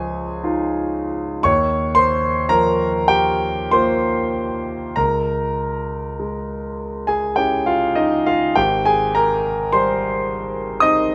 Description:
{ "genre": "classical, impressionist solo piano", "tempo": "46-61 BPM", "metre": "3/4", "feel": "rubato", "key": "unclear", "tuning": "A4 = 440 Hz", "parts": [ { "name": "clear concert grand piano", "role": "solo", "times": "0.0-11.1 s", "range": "Ab1 to Eb6", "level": "-19 LUFS", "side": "equal", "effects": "none" } ], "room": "light reverb", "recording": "nothing above 10.7 kHz", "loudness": "-19 LUFS", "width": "mono", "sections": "0.0-11.1 A section", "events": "none", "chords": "0.0 Dbadd9; 1.4 Eb9; 5.0 Dbm6; 8.6 Abmaj9" }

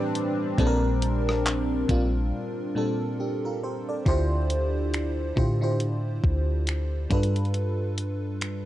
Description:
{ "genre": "contemporary R&B", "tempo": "69 BPM", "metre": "4/4", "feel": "swing 58% on 16ths", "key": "unclear", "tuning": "A4 = 442 Hz", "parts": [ { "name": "FM electric piano with soft pad layer", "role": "accompaniment", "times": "0.0-8.7 s", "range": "A2 to D5", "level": "-27 LUFS", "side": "equal", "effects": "chorus" }, { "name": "chorused pulse-width pad", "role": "sustained chords", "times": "0.0-4.0 s", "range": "G3 to B4", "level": "-32 LUFS", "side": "left 2 dB", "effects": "sidechain pumping" }, { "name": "clean 808-style bass", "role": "bass", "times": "0.0-8.7 s", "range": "Bb1 to A2", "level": "-27 LUFS", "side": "equal", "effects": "none" }, { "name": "clean 12-bit digital drum machine", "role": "drums", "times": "0.2-8.7 s", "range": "finger snaps, handclaps, hi-hat, kick drum, rim click", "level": "-28 LUFS", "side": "equal", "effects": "vintage 12-bit sampler grit" } ], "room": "little or no reverb", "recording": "dry, gritty hardware recording", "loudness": "-24 LUFS", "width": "side -14 dB against mid", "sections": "0.0-4.1 A section; 4.1-8.7 B section", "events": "break 2.3-4.1", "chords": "0.0 Am11; 0.6 Bb69; 4.1 Dm11; 7.1 G9" }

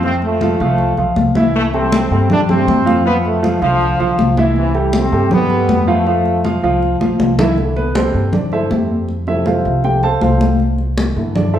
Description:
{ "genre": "latin, salsa", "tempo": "159 BPM", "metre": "4/4", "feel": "straight", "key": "C major", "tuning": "A4 = 441 Hz", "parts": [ { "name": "warm upright piano", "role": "accompaniment", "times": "0.0-11.6 s", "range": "C3 to A5", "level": "-17 LUFS", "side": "right 1 dB", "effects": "none" }, { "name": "upright bass", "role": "bass", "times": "0.0-11.6 s", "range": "B1 to G2", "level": "-19 LUFS", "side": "equal", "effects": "none" }, { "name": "congas", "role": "percussion", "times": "0.0-11.6 s", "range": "none", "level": "-18 LUFS", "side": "left 1 dB", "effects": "none" }, { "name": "bright trombone section", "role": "melody", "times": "0.1-6.5 s", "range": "C3 to D4", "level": "-18 LUFS", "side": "equal", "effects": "none" } ], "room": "wet large studio reverb, RT60 1.3 s", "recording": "band playing live in one room", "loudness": "-12 LUFS", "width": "side -10 dB against mid", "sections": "0.0-7.6 A section; 7.6-11.6 B section", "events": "drum fill 7.0-7.6; upright piano solo 7.6-11.6", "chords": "0.0 F; 1.5 C6; 3.1 F; 4.6 C6; 6.1 F; 7.6 C6; 9.1 F; 10.6 C6" }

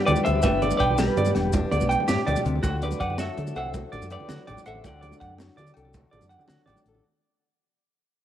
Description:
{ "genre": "highlife guitar band", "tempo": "109 BPM (dotted quarters)", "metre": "12/8", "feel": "straight", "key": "unclear", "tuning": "A4 = 440 Hz", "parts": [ { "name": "semi-hollow electric guitar", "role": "melody", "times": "0.0-6.7 s", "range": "G4 to F#5", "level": "-28 LUFS", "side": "right 1 dB", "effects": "tremolo, cassette tape" }, { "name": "fingerpicked old ladder-braced acoustic guitar", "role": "accompaniment", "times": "0.0-7.0 s", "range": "G2 to B4", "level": "-31 LUFS", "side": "left 4 dB", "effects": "cassette tape" }, { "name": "clean electric guitar", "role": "arpeggios", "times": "0.1-6.8 s", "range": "F#4 to G5", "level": "-29 LUFS", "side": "right 3 dB", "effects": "cassette tape" }, { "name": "fingered electric bass", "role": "bass", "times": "0.1-7.0 s", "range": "E1 to D3", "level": "-29 LUFS", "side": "equal", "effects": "none" }, { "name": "tight funk drum kit", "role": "drums", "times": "0.1-6.9 s", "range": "hi-hat, kick drum, snare drum", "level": "-31 LUFS", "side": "equal", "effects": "none" }, { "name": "agogo bells", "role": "percussion", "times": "0.1-6.9 s", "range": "none", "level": "-35 LUFS", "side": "left 5 dB", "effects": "none" }, { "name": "congas", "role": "percussion", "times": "0.1-7.0 s", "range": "none", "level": "-31 LUFS", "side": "right 4 dB", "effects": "none" }, { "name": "maracas", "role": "percussion", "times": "0.2-6.9 s", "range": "none", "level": "-42 LUFS", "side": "left 7 dB", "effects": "none" } ], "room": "light reverb, small room reverb", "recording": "home recording on cassette", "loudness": "-21 LUFS", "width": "side -10 dB against mid", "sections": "0.0-7.0 A section", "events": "fade-out 0.0-7.0", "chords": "0.0 G; 2.6 D" }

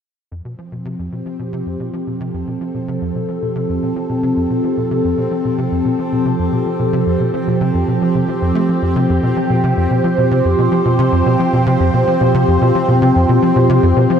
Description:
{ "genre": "ambient, sequencer-driven space music", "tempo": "111 BPM", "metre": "4/4", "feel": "straight", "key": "F lydian", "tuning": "A4 = 441 Hz", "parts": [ { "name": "phased analog pad", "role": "sustained chords", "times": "0.7-14.2 s", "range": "F3 to C5", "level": "-16 LUFS", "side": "equal", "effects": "phaser, chorus, shimmer reverb" }, { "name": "tight sequencer bass", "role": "riff", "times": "0.3-14.2 s", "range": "F2 to A3", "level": "-18 LUFS", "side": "equal", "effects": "ensemble chorus, ping-pong delay" }, { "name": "bubbling stepped-filter texture", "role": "texture", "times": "0.8-14.2 s", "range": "C4", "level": "-27 LUFS", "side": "equal", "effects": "chorus, built-in reverb, shimmer reverb" } ], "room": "wet plate reverb, RT60 2.3 s", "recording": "none", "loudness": "-13 LUFS", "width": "side -8 dB against mid", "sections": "0.3-14.2 A section", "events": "fade-in on analog synth bass 0.3-14.2; fade-in on synth texture 0.3-14.2", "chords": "0.3 F" }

